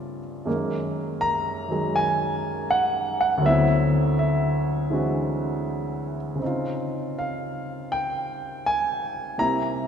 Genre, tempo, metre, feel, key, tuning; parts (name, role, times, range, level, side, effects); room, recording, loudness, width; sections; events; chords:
solo jazz; 81 BPM; 4/4; swing 68% on 8ths; A4 = 441 Hz
warm grand piano; solo; 0.0-9.9 s; D2 to Bb5; -22 LUFS; equal
wet church reverb, RT60 3.1 s; recorded in a church or concert hall; -22 LUFS; side -8 dB against mid
0.0-9.9 A section
0.5 Gb69; 3.4 D13; 6.4 Dbmaj9